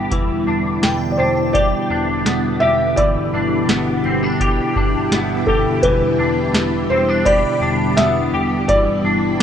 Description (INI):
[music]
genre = dream pop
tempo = 84 BPM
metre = 4/4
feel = straight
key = E minor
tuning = A4 = 441 Hz
[part]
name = string machine, full ensemble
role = sustained chords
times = 0.0-9.4 s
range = B2 to G4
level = -20 LUFS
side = equal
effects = ensemble chorus
[part]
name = clean electric guitar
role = arpeggios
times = 0.0-9.4 s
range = E3 to G4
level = -21 LUFS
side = left 2 dB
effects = ensemble chorus, tape echo
[part]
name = vintage muted picked electric bass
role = bass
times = 0.0-9.4 s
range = E1 to G1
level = -28 LUFS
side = right 1 dB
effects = none
[part]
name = booming analog drum machine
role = drums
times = 0.1-9.4 s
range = hi-hat, kick drum, snare drum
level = -19 LUFS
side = equal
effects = none
[part]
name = shimmering bell with halo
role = texture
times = 0.8-1.7, 7.3-8.1 s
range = G5 to B5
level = -29 LUFS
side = left 1 dB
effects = ensemble chorus, tape echo
[part]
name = felt-muted upright piano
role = melody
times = 1.1-9.4 s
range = A4 to E5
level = -18 LUFS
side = equal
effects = tape echo
[sound]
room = moderate lush hall reverb, RT60 2.0 s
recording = rough home demo mix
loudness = -15 LUFS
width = side -8 dB against mid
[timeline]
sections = 0.0-9.4 A section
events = none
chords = 0.1 Em7; 3.0 G6; 5.8 Em7; 8.7 G6